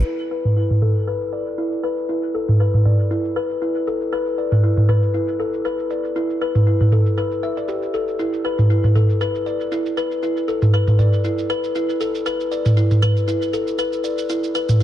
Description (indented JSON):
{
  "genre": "afro house",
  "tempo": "118 BPM",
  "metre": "4/4",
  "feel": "swing 55% on 16ths",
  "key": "unclear",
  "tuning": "A4 = 440 Hz",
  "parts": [
    { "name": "kalimba", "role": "arpeggios", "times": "0.1-14.8 s", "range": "E4 to E5", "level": "-21 LUFS", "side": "left 2 dB", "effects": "low-pass filter, dub echo" },
    { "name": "electronic shaker and toms", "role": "drums", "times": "0.1-14.8 s", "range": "none", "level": "-17 LUFS", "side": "right 1 dB", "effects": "low-pass filter on perc, low-pass filter on toms, soft clipping on snare, low-pass filter on snare" }
  ],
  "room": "light reverb, digital ambience",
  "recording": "dense, heavily limited modern master",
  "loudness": "-17 LUFS",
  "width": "side -12 dB against mid",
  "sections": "0.1-14.8 A section",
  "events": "filter sweep on drum 0.1-14.8; filter sweep on kalimba 0.1-14.8",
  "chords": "none"
}